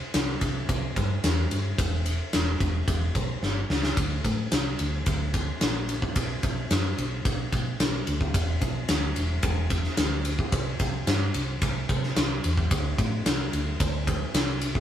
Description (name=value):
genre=quiet-loud alternative rock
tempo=110 BPM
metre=4/4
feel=straight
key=D mixolydian from 4.0 s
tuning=A4 = 440 Hz
part: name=hollow-body short-scale fingered electric bass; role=bass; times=0.1-14.8 s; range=E1 to C3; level=-28 LUFS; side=equal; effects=none
part: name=big rock drum kit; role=drums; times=0.1-14.8 s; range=kick drum, ride cymbal, snare drum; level=-26 LUFS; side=equal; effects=none
room=light reverb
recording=band playing live in one room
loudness=-24 LUFS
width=side -10 dB against mid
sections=0.0-4.0 A section; 4.0-14.8 B section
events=drum fill 3.4-4.0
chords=none